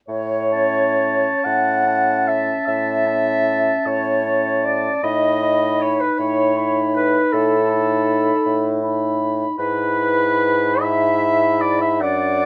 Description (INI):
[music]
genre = classical, slow romantic movement for wind quintet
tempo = 42-54 BPM (dotted quarters)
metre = 12/8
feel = rubato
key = A major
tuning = A4 = 440 Hz
[part]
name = silver concert flute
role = melody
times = 0.1-12.5 s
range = A4 to F#5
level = -31 LUFS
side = equal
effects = none
[part]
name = warm clarinet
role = accompaniment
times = 0.1-12.5 s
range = A4 to F#5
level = -22 LUFS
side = equal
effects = none
[part]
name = mellow bassoon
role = bass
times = 0.1-12.5 s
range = F#2 to A2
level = -25 LUFS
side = equal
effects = none
[part]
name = mellow oboe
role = second line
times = 0.5-12.5 s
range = F#5 to B5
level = -25 LUFS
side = equal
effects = none
[part]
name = dark French horn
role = accompaniment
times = 0.5-12.5 s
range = C#4 to E4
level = -28 LUFS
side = equal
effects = none
[sound]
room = light reverb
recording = none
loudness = -19 LUFS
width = mono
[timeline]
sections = 0.1-12.5 A section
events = none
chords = 0.1 A; 5.0 B7/A; 9.6 E/G#